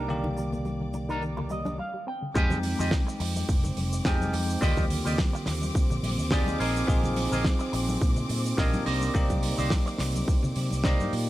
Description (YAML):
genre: nu-disco, nu disco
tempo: 106 BPM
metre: 4/4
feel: swing 54% on 16ths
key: F dorian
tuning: A4 = 440 Hz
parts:
  - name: bell-like tine electric piano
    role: accompaniment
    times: 0.0-11.3 s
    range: D3 to G5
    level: -32 LUFS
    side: equal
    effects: medium stereo tremolo, vintage 12-bit sampler grit, sidechain pumping, tape echo
  - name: dark studio string section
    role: sustained chords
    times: 0.0-11.3 s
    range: C4 to D6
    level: -37 LUFS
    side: left 1 dB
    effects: sidechain pumping
  - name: electric guitar with an envelope filter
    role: riff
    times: 0.0-11.1 s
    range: D4 to G5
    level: -34 LUFS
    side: right 1 dB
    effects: wide subtle chorus, tape echo
  - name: fingered electric bass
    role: bass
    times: 0.0-11.3 s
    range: F1 to C3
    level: -30 LUFS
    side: equal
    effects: sidechain pumping
  - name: wide unison pluck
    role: arpeggios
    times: 0.1-2.3 s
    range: D3 to D4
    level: -38 LUFS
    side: left 2 dB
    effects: vintage 12-bit sampler grit, sidechain pumping, tape echo
  - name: damped 70s drum kit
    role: drums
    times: 0.1-11.3 s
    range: hi-hat, shaker, snare drum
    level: -34 LUFS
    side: right 2 dB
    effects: low-pass filter on hats, low-pass filter on snare, low-pass filter on perc, low-pass filter on room
  - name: egg shaker and congas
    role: percussion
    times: 0.1-11.3 s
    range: none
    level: -36 LUFS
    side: left 1 dB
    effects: none
  - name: electronic kick drum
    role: drums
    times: 2.4-11.0 s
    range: none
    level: -25 LUFS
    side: equal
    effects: none
room: light reverb, small room ambience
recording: none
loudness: -24 LUFS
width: side -15 dB against mid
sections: 0.0-2.4 A section; 2.4-11.3 B section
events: filter sweep on clean electric guitar 0.0-2.4; clean electric guitar fill 1.2-2.4; break 1.8-2.4; drop 2.4-11.3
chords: 0.0 Cm9; 2.4 Fm9; 4.6 Bb7sus4; 8.9 Cm9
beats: | 0.09 0.66 1.22 1.79 | 2.35 2.92 3.49 4.05 | 4.62 5.18 5.75 6.32 | 6.88 7.45 8.02 8.58 | 9.15 9.71 10.28 10.85